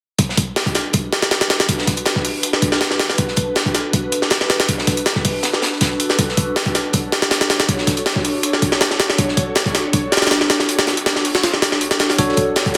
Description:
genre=drum and bass, jungle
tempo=160 BPM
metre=4/4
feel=straight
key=B minor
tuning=A4 = 441 Hz
part: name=ethereal airy pad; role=sustained chords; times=0.7-12.8 s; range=D4 to C#5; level=-25 LUFS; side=equal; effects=ensemble chorus, built-in reverb, phaser
part: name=crunchy breakbeat drum kit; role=drums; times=0.2-12.8 s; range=hi-hat, snare drum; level=-28 LUFS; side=equal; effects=high-pass filter on hats, high-pass filter on snare, high-pass filter on room
part: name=jungle sampler-style drum kit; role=drums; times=0.2-12.8 s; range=hi-hat, kick drum, snare drum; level=-19 LUFS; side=equal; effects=high-pass filter on hats, high-pass filter on kick, high-pass filter on snare, high-pass filter on room
part: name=bell-like tine electric piano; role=stabs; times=12.2-12.8 s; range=D4 to C#5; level=-21 LUFS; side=equal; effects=vintage 12-bit sampler grit
room=moderate digital room reverb, RT60 1.0 s, small room reverb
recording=dense, heavily limited modern master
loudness=-18 LUFS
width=mono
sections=0.2-12.8 A section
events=none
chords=0.2 Bm7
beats=| 0.18 0.56 0.93 1.31 | 1.68 2.06 2.43 2.81 | 3.18 3.56 3.93 4.31 | 4.68 5.06 5.43 5.81 | 6.18 6.56 6.93 7.31 | 7.68 8.06 8.43 8.81 | 9.18 9.56 9.93 10.31 | 10.68 11.06 11.43 11.81 | 12.18 12.56

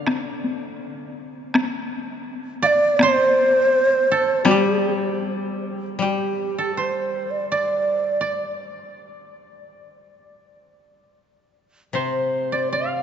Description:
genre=japanese traditional, Japanese chamber music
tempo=81 BPM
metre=2/4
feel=rubato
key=G suspended pentatonic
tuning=A4 = 442 Hz
part: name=koto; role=second line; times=0.0-13.0 s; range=G4 to F5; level=-26 LUFS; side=right 3 dB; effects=none
part: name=koto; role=accompaniment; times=0.0-0.8, 4.4-8.2, 11.9-13.0 s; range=C3 to G3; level=-26 LUFS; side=left 7 dB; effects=none
part: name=taiko ensemble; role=percussion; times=0.1-4.6 s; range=none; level=-26 LUFS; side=left 2 dB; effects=none
part: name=breathy mellow long shakuhachi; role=melody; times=2.6-8.6, 11.9-13.0 s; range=G4 to F5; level=-20 LUFS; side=right 2 dB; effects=none
room=wet cathedral reverb, RT60 5.3 s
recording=nothing above 7.7 kHz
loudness=-18 LUFS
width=side -8 dB against mid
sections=0.0-6.0 A section; 6.0-13.0 B section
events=none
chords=none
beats=| 0.06 0.82 | 1.55 2.28 | 3.00 3.73 | 4.48 5.23 | 6.00 6.75 | 7.49 8.22 | 8.94 9.67 | 10.42 11.19 | 11.95 12.71

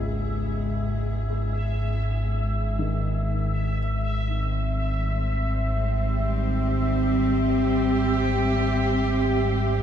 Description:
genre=dark ambient drone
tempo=free time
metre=none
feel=none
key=unclear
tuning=A4 = 441 Hz
part: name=dark chamber cello section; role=sustained chords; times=0.0-9.8 s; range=G3 to G#4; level=-27 LUFS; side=right 1 dB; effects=none
part: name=dark concert grand piano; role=arpeggios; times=0.0-8.8 s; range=Db2 to G#4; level=-35 LUFS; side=left 3 dB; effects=diffuse ambient delay
part: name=deep rumbling drone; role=drone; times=0.0-9.8 s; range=G#1 to G#2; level=-25 LUFS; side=equal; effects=built-in reverb
part: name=bubbling stepped-filter texture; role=texture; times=0.0-9.8 s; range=E5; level=-32 LUFS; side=equal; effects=chorus, built-in reverb
room=wet huge ambient reverb, RT60 7.6 s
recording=none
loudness=-22 LUFS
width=side -9 dB against mid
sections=0.0-9.8 A section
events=fade-in on cello section 0.0-9.8; fade-in on synth texture 0.0-9.8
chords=0.0 E; 3.8 C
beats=free time

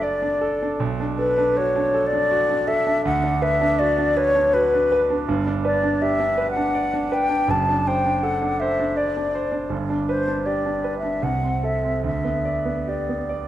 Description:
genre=classical, romantic duo for flute and grand piano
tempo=80 BPM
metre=3/4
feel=uneven beats, rubato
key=G major from 5.3 s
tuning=A4 = 438 Hz
part: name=mellow hollow silver concert flute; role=melody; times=0.0-13.5 s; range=B4 to A5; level=-21 LUFS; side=left 2 dB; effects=none
part: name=clear concert grand piano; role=accompaniment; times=0.0-13.5 s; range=F#1 to D5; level=-23 LUFS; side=right 2 dB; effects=none
room=wet recital hall reverb, RT60 1.4 s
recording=dark, warm production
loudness=-19 LUFS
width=side -12 dB against mid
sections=0.0-13.5 A section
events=none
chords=0.0 D/F#; 0.8 Bm7; 3.0 Bm/D; 5.3 G; 7.5 D7/F#; 9.7 G; 11.2 Am/C; 12.1 G/D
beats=0.03 | 0.80 1.57 2.31 | 3.05 3.80 4.54 | 5.28 6.01 6.75 | 7.50 8.24 8.97 | 9.71 10.46 11.24 | 12.05 12.88

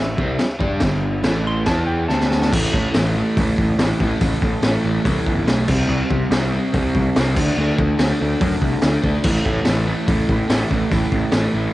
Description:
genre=garage rock duo or trio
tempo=142 BPM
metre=4/4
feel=straight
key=A minor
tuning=A4 = 441 Hz
part: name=clean lap steel guitar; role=melody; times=0.0-2.5 s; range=E5 to C6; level=-27 LUFS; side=right 1 dB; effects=cassette tape
part: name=crunchy overdriven guitar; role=riff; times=0.0-11.7 s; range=G2 to G4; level=-21 LUFS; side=equal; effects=cassette tape
part: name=fuzz picked electric bass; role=bass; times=0.0-11.7 s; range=G1 to C3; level=-22 LUFS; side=equal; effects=overdrive, tube saturation
part: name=raw garage drum kit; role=drums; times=0.2-11.4 s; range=crash cymbal, hi-hat, kick drum, snare drum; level=-21 LUFS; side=equal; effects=cassette tape
room=little or no reverb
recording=home recording on cassette, nothing above 10.7 kHz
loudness=-16 LUFS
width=side -16 dB against mid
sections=0.0-2.5 A section; 2.5-11.7 B section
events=electric slide guitar solo 0.0-2.5; drum fill 2.1-2.5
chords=0.0 Am; 0.8 G5; 1.2 Am; 1.7 E5; 2.1 D5; 2.5 A5; 5.7 C5; 7.4 D5; 9.2 A5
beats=0.40 | 0.82 1.25 1.67 2.09 | 2.52 2.94 3.36 3.79 | 4.21 4.63 5.05 5.47 | 5.89 6.32 6.74 7.16 | 7.58 8.00 8.41 8.83 | 9.25 9.66 10.08 10.50 | 10.91 11.33

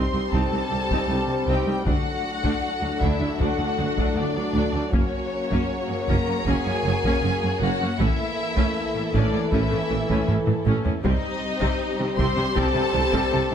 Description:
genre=cinematic, epic orchestral film score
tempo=79 BPM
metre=4/4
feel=straight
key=unclear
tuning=A4 = 440 Hz
part: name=warm symphonic violin section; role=melody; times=0.0-13.5 s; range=C#5 to C6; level=-30 LUFS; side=left 3 dB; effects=none
part: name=rich symphonic violin section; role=second line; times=0.0-13.5 s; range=C#4 to C5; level=-32 LUFS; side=equal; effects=none
part: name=rich symphonic viola section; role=accompaniment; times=0.0-13.5 s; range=Eb3 to Eb4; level=-29 LUFS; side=right 2 dB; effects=none
part: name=clear trombone section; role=sustained chords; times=0.0-13.5 s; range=G2 to G3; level=-33 LUFS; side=right 3 dB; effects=none
part: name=warm French horn section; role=sustained chords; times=0.0-13.5 s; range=A#3 to C5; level=-31 LUFS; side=left 6 dB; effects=none
part: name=warm symphonic string section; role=sustained chords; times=0.0-13.5 s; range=E3 to C#5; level=-32 LUFS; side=left 2 dB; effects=none
part: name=mellow tuba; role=bass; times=0.0-13.4 s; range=F#1 to D2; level=-32 LUFS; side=right 4 dB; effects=none
part: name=rich symphonic cello section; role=bass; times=0.0-13.5 s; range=C2 to C3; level=-30 LUFS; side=right 2 dB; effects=none
part: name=rich symphonic double bass section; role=bass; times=0.0-13.4 s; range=F#1 to D2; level=-29 LUFS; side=right 2 dB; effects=none
part: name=taiko ensemble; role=drums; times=0.3-13.5 s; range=none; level=-27 LUFS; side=left 1 dB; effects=none
room=light reverb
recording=close, detailed microphones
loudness=-21 LUFS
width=side -8 dB against mid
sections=0.0-13.5 A section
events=drum fill 10.3-11.0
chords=0.0 Cm; 1.9 D; 4.9 F#; 8.0 A; 11.0 Cm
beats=0.33 1.10 | 1.87 2.63 3.40 4.17 | 4.94 5.71 6.47 7.24 | 8.00 8.76 9.53 10.28 | 11.04 11.80 12.56 13.32

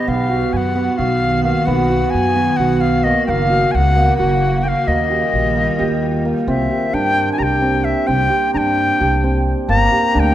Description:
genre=contemporary instrumental, chamber music in an uneven meter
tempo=262 BPM (eighths)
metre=7/8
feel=straight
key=unclear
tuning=A4 = 440 Hz
part: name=bright reedy wooden flute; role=melody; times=0.0-10.3 s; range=D#5 to Bb5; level=-18 LUFS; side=left 3 dB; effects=none
part: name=icy glass pad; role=sustained chords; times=0.0-6.5 s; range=Db3 to F#4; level=-24 LUFS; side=right 1 dB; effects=chorus, built-in reverb
part: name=hammered dulcimer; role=arpeggios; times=0.0-10.3 s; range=Bb3 to G4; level=-18 LUFS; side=right 2 dB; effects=none
part: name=upright bass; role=bass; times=0.1-10.3 s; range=Gb1 to G2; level=-20 LUFS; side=equal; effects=none
room=moderate concert hall reverb, RT60 1.9 s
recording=dark, warm production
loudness=-14 LUFS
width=side -12 dB against mid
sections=0.0-6.5 A section; 6.5-10.3 B section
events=none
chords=0.1 B; 3.3 Gb; 4.9 Ebadd9; 6.5 Cadd9; 9.7 Gm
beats=| 0.07 0.30 0.53 0.76 0.99 1.22 1.45 | 1.68 1.91 2.13 2.36 2.59 2.82 3.05 | 3.28 3.51 3.73 3.96 4.19 4.42 4.65 | 4.88 5.11 5.34 5.57 5.79 6.02 6.25 | 6.48 6.71 6.94 7.17 7.40 7.63 7.86 | 8.09 8.31 8.54 8.77 9.00 9.23 9.46 | 9.69 9.92 10.15

